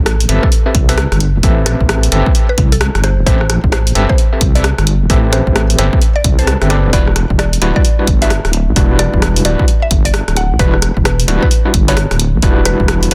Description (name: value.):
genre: UK garage, two-step garage.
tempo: 131 BPM.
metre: 4/4.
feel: swing 63% on 16ths.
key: A minor.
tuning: A4 = 441 Hz.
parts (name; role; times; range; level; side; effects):
deep soft wobble bass; bass; 0.0-13.1 s; D1 to C2; -16 LUFS; equal; chorus.
mallet-like synth pluck; melody; 0.1-13.1 s; A4 to F#5; -25 LUFS; equal; chorus, phaser, vintage 12-bit sampler grit, delay.
punchy analog drum machine; drums; 0.1-13.1 s; hi-hat, rim click; -20 LUFS; equal; soft clipping on snare.
overdriven tine electric piano; stabs; 0.3-13.1 s; G3 to A5; -21 LUFS; equal; medium tremolo, delay.
electronic kick drum; drums; 0.4-12.9 s; none; -16 LUFS; equal; none.
room: little or no reverb.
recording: dense, heavily limited modern master.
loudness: -12 LUFS.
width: mono.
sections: 0.0-13.1 A section.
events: none.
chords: 0.0 Am9; 6.9 Em9.